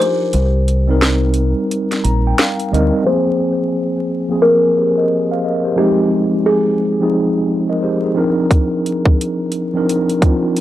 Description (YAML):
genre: lo-fi hip hop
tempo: 88 BPM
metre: 4/4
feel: swing 63% on 16ths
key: C minor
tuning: A4 = 441 Hz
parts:
  - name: buzzing kalimba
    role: melody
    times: 0.0-8.1 s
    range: G4 to C5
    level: -17 LUFS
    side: left 1 dB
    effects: low-pass filter, analog delay, plate reverb
  - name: mellow tine electric piano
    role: accompaniment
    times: 0.0-10.6 s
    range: F3 to Bb5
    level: -16 LUFS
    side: equal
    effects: medium stereo tremolo, cassette tape, low-pass filter
  - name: garage drum kit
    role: drums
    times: 0.0-2.9, 8.5-10.6 s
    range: hi-hat, kick drum, snare drum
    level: -15 LUFS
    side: equal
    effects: none
  - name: deep dub fingered electric bass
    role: bass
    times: 0.3-2.9 s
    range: Bb1 to D2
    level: -15 LUFS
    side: equal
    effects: none
room: moderate small room reverb, RT60 0.5 s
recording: dry, gritty hardware recording, vinyl crackle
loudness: -13 LUFS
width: side -13 dB against mid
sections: 0.0-3.0 A section; 3.0-10.6 B section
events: kick muted 0.3-3.0; tine electric piano fill 1.7-3.0; filter sweep 3.0-10.6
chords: 0.3 Cm7; 3.0 Ab69; 8.2 Cm11